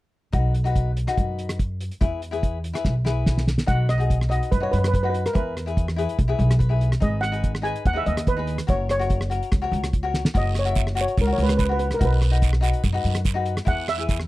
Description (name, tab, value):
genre	calypso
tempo	144 BPM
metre	4/4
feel	straight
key	B major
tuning	A4 = 440 Hz
part	cavaquinho	accompaniment	0.3-14.2 s	D#4 to E5	-29 LUFS	left 5 dB	none
part	upright bass	bass	0.3-14.3 s	F#1 to F#2	-23 LUFS	equal	none
part	cloth-damped thuddy drum kit	drums	0.3-14.3 s	hi-hat, kick drum, rim click, snare drum	-24 LUFS	equal	none
part	steel pan	melody	3.7-14.3 s	A#4 to G#5	-26 LUFS	right 1 dB	none
part	guiro	percussion	10.4-14.2 s	none	-35 LUFS	right 11 dB	none
room	little or no reverb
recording	dry, close 1970s-style studio recording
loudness	-20 LUFS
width	side -17 dB against mid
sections	0.3-3.7 A section; 3.7-14.3 B section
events	drum fill 2.8-3.7, 10.1; cavaquinho fill 6.4-7.0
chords	0.3 B; 2.0 E; 3.7 Badd9; 5.4 E; 7.0 G#m; 8.7 F#; 12.0 B; 13.7 E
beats	| 0.34 0.76 1.17 1.59 | 2.01 2.43 2.85 3.26 | 3.68 4.10 4.52 4.93 | 5.35 5.77 6.18 6.60 | 7.02 7.43 7.85 8.27 | 8.68 9.10 9.52 9.93 | 10.35 10.76 11.18 11.60 | 12.01 12.43 12.84 13.26 | 13.67 14.09